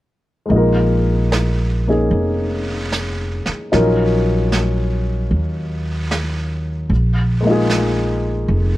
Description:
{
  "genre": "jazz ballad",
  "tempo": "75 BPM",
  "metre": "4/4",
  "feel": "swing 69% on 8ths",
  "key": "unclear",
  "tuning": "A4 = 441 Hz",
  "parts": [
    { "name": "warm grand piano", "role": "accompaniment", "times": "0.5-8.8 s", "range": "Gb3 to Bb4", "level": "-19 LUFS", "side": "left 2 dB", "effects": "none" },
    { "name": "upright bass", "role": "bass", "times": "0.5-8.8 s", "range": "F1 to Eb2", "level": "-18 LUFS", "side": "equal", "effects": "none" },
    { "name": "jazz brush drum kit", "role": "drums", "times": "0.5-8.8 s", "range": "brushed snare drum, hi-hat, snare drum", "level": "-26 LUFS", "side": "right 2 dB", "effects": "none" }
  ],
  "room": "light reverb",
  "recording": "worn, warbling old tape, cassette tape, warbly pitch drift",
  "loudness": "-16 LUFS",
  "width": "side -16 dB against mid",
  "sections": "0.5-8.8 A section",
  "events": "none",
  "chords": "0.5 Bb7sus4; 3.7 Ebm7/Bb; 6.9 Bb7sus4",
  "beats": "| 0.51 1.32 2.12 2.92 | 3.73 4.52 5.32 6.11 | 6.91 7.70 8.49"
}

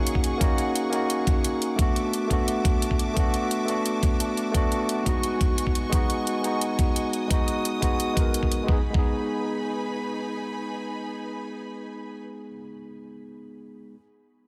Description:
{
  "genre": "liquid drum and bass",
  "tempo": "174 BPM",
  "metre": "4/4",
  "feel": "straight",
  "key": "unclear",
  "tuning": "A4 = 440 Hz",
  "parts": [
    { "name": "barky tine electric piano", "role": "accompaniment", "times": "0.0-14.0 s", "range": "G#3 to A#4", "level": "-29 LUFS", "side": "equal", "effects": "low-pass filter, dub echo" },
    { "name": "warm studio string section", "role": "sustained chords", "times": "0.0-12.2 s", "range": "D#4 to D#6", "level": "-37 LUFS", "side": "equal", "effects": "sidechain pumping" },
    { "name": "electronic hi-hat", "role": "drums", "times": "0.1-8.6 s", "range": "none", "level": "-33 LUFS", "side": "equal", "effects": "overdrive, small room ambience" },
    { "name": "electronic kick drum", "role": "drums", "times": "0.2-9.0 s", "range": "none", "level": "-26 LUFS", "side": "equal", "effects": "small room ambience" }
  ],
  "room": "light reverb, small room ambience",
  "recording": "none",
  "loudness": "-25 LUFS",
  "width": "mono",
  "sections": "0.0-8.7 A section; 8.7-11.4 B section",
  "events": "filter sweep on tine electric piano 0.0-8.7",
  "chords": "0.0 G#9sus4; 1.8 E9sus4; 5.1 C#9sus4; 8.7 G#m",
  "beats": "0.06 | 0.41 0.75 1.10 1.44 | 1.79 2.13 2.48 2.82 | 3.17 3.51 3.85 4.20 | 4.54 4.89 5.24 5.58 | 5.92 6.27 6.61 6.96 | 7.30 7.65 7.99 8.34 | 8.68 9.03 9.37 9.72 | 10.06 10.41 10.75 11.10"
}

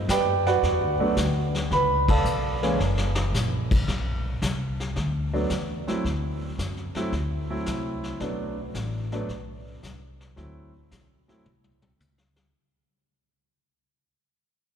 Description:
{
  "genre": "jazz piano trio",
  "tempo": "111 BPM",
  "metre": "4/4",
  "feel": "swing 69% on 8ths",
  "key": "unclear",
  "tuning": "A4 = 440 Hz",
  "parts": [
    { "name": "upright bass", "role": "bass", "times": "0.0-12.5 s", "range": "F#1 to F#2", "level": "-28 LUFS", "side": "equal", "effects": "none" },
    { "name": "clear concert grand piano", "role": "melody", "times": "0.1-11.4 s", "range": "E3 to B5", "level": "-26 LUFS", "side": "right 2 dB", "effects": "none" },
    { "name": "vintage brush drum kit", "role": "drums", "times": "0.1-12.5 s", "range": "brushed snare drum, crash cymbal, hi-hat, kick drum, ride cymbal, snare drum, toms", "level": "-30 LUFS", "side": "left 2 dB", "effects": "none" }
  ],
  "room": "wet cathedral reverb, RT60 4.7 s",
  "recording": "recorded in a church or concert hall",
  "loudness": "-23 LUFS",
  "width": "side -8 dB against mid",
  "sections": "0.0-3.9 A section; 3.9-12.5 B section",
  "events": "band accent 2.0; drum fill 2.8-3.3, 11.5-12.5; fade-out 3.9-12.5",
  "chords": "0.0 Gmaj7; 1.7 C#7(no3); 2.8 F#; 3.9 Bm; 6.0 D7; 8.2 Bm7; 10.4 D7",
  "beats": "0.09 0.63 1.17 | 1.71 2.25 2.79 3.33 | 3.88 4.42 4.96 5.50 | 6.04 6.58 7.12 7.66 | 8.21 8.75 9.29 9.83 | 10.37 10.91 11.45 11.99"
}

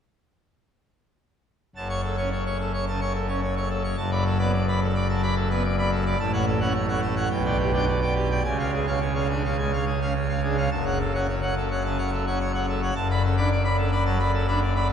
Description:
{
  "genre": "classical, organ toccata",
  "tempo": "108 BPM",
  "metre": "4/4",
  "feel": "straight",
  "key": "F# minor",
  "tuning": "A4 = 441 Hz",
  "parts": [
    { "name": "pipe organ, full organ", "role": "solo", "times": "1.8-14.9 s", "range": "F#1 to C#6", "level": "-22 LUFS", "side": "equal", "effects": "none" }
  ],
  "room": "wet cathedral reverb, RT60 6.2 s",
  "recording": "heard from further back in the room",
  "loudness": "-22 LUFS",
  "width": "side -8 dB against mid",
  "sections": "1.7-14.9 A section",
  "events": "none",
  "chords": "1.7 F#m; 4.0 Bm7/F#; 6.2 F#m/A; 7.3 G/B; 8.4 C#; 10.7 F#m; 13.0 Bm7/F#",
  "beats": "| 1.75 2.31 2.87 3.43 | 3.98 4.54 5.10 5.65 | 6.20 6.75 7.31 7.87 | 8.44 9.01 9.58 10.15 | 10.73 11.29 11.85 12.40 | 12.96 13.51 14.06 14.61"
}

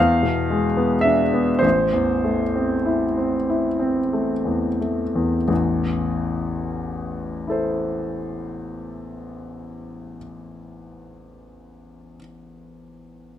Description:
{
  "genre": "classical, romantic nocturne for solo piano",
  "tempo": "28-37 BPM (dotted quarters)",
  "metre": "12/8",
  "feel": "rubato",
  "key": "A minor",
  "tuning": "A4 = 440 Hz",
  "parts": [
    { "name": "clear grand piano", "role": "solo", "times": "0.0-13.4 s", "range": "A1 to F5", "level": "-20 LUFS", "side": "left 1 dB", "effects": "none" }
  ],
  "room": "moderate recital hall reverb, RT60 1.6 s",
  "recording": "close, detailed microphones",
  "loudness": "-19 LUFS",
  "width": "side -10 dB against mid",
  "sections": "0.0-5.5 A section; 5.5-13.4 B section",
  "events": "slowing down 0.0-5.5",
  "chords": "0.0 E7b9; 1.6 Am",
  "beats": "1.63 3.49 | 5.49 7.48 9.48 11.40"
}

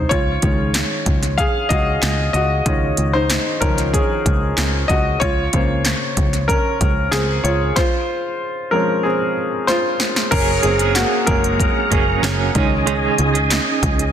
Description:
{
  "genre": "piano-driven pop",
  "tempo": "94 BPM",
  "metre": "4/4",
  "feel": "straight",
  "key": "Db major",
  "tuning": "A4 = 439 Hz",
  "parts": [
    { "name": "clear concert grand piano", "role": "accompaniment", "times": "0.0-14.1 s", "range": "Db3 to F5", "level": "-19 LUFS", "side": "left 1 dB", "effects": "none" },
    { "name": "picked electric bass", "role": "bass", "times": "0.0-14.1 s", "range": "Gb1 to Db2", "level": "-21 LUFS", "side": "equal", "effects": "none" },
    { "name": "deep house drum kit", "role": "drums", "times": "0.1-14.1 s", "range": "crash cymbal, handclaps, hi-hat, kick drum, snare drum", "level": "-20 LUFS", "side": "equal", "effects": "none" },
    { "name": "bright tonewheel organ", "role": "sustained chords", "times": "10.3-14.1 s", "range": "Db4 to Bb5", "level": "-23 LUFS", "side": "equal", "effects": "chorus vibrato, slow rotary speaker" },
    { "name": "direct-recorded clean electric guitar", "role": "riff", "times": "10.3-14.1 s", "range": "Db3 to Ab4", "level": "-21 LUFS", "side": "right 10 dB", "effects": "tremolo" }
  ],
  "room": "moderate lush hall reverb, RT60 1.6 s, digital ambience",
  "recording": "dense, heavily limited modern master",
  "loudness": "-15 LUFS",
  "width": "side -9 dB against mid",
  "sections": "0.0-10.3 A section; 10.3-14.1 B section",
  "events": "grand piano solo 0.0-10.3, 10.3-14.1; drum fill 9.7-10.3",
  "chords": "0.1 Dbadd9; 5.2 Bbmadd9/Db; 7.8 Fm; 10.3 Gbadd9; 12.6 Dbsus2",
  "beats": "| 0.11 0.75 1.38 2.02 | 2.66 3.30 3.94 4.58 | 5.21 5.85 6.49 7.13 | 7.77 8.40 9.04 9.68 | 10.32 10.96 11.60 12.23 | 12.87 13.51"
}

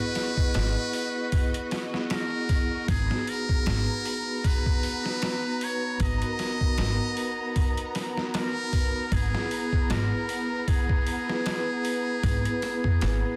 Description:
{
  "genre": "trip hop",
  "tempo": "77 BPM",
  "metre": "4/4",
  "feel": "swing 56% on 16ths",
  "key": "G# minor",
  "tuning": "A4 = 440 Hz",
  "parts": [
    { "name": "trumpet with metal mute", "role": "melody", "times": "0.0-13.4 s", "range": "G#4 to D#5", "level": "-34 LUFS", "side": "equal", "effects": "tape echo" },
    { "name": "vibraphone with medium mallets", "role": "accompaniment", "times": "0.0-13.4 s", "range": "B3 to B4", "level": "-34 LUFS", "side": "equal", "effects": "harmonic tremolo" },
    { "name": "warm symphonic violin section", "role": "sustained chords", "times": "0.0-13.4 s", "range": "B3 to A#5", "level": "-39 LUFS", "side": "equal", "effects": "none" },
    { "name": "trip hop sampler-style drum kit", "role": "drums", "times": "0.2-13.2 s", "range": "hi-hat, kick drum, snare drum", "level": "-30 LUFS", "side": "equal", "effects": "overdrive" },
    { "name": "upright bass", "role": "bass", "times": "0.6-13.2 s", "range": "G#1", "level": "-30 LUFS", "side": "equal", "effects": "none" }
  ],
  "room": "small room ambience",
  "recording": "dense, heavily limited modern master",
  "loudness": "-27 LUFS",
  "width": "mono",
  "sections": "0.0-13.4 A section",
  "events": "none",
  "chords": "0.0 E/G#; 2.9 G#m9; 9.1 E/G#",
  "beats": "0.55 1.33 2.11 | 2.89 3.67 4.45 5.22 | 6.00 6.78 7.56 8.34 | 9.12 9.90 10.68 11.46 | 12.24 13.02"
}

